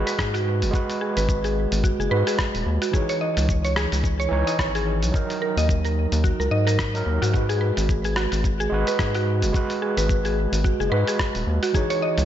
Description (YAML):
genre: organic downtempo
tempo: 109 BPM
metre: 4/4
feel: swing 57% on 16ths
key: G# minor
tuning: A4 = 439 Hz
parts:
  - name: overdriven tine electric piano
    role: accompaniment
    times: 0.0-12.2 s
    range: E3 to C#5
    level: -27 LUFS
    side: right 3 dB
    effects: medium tremolo, sidechain pumping, tape echo, slapback echo
  - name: round analog bass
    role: bass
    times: 0.0-12.2 s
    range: D#1 to G#2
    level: -23 LUFS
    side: equal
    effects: sidechain pumping
  - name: mallet-like synth pluck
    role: arpeggios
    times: 0.1-12.2 s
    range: F#4 to D#5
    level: -26 LUFS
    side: equal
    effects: chorus, tape echo, slapback echo
  - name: dusty soul sampler-style drum kit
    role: drums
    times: 0.1-12.2 s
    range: hi-hat, rim click, shaker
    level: -30 LUFS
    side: left 1 dB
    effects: slapback echo
  - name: electronic kick drum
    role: drums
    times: 0.2-11.9 s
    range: none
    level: -24 LUFS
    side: equal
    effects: none
room: moderate lush hall reverb, RT60 1.7 s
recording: big arena sound, nothing above 7.7 kHz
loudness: -20 LUFS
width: side -11 dB against mid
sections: 0.0-12.2 A section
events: none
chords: 0.0 G#m7; 2.9 C#madd9; 5.1 D#m; 7.3 G#m7; 11.7 C#madd9